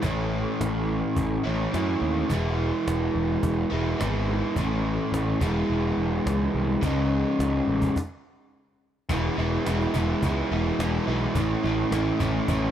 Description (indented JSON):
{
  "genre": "indie rock",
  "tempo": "106 BPM",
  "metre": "4/4",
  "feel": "straight",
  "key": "E major",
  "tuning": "A4 = 436 Hz",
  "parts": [
    { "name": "overdriven electric guitar", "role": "riff", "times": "0.0-12.7 s", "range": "A2 to E4", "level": "-25 LUFS", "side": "equal", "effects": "none" },
    { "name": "fuzz picked electric bass", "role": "bass", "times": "0.0-12.7 s", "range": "E1 to F#2", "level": "-27 LUFS", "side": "equal", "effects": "overdrive" },
    { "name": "cajon", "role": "drums", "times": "0.0-12.6 s", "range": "none", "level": "-31 LUFS", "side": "equal", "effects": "none" }
  ],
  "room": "small room ambience",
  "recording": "dark, warm production",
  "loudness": "-23 LUFS",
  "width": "side -10 dB against mid",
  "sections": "0.0-9.1 A section; 9.1-12.7 B section",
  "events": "stop 8.0-9.1",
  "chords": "0.0 A; 2.3 E; 4.6 A; 5.4 E; 6.8 C#sus2; 8.0 N.C.; 9.1 E; 11.4 A"
}